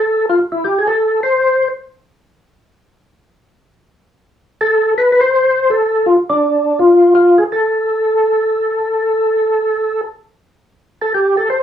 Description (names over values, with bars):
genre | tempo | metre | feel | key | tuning
jazz | 166 BPM | 4/4 | swing 64% on 8ths | A minor | A4 = 440 Hz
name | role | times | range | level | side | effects
percussive tonewheel organ | solo | 0.0-1.7, 4.6-11.6 s | D4 to C5 | -12 LUFS | left 1 dB | slow rotary speaker, overdrive, chorus vibrato
room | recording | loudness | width
wet studio reverb, RT60 0.5 s | worn, warbling old tape, cassette tape, warbly pitch drift, small room ambience | -12 LUFS | side -9 dB against mid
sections
0.0-10.4 A section; 10.4-11.6 B section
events
tonewheel organ solo 10.4-11.6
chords
none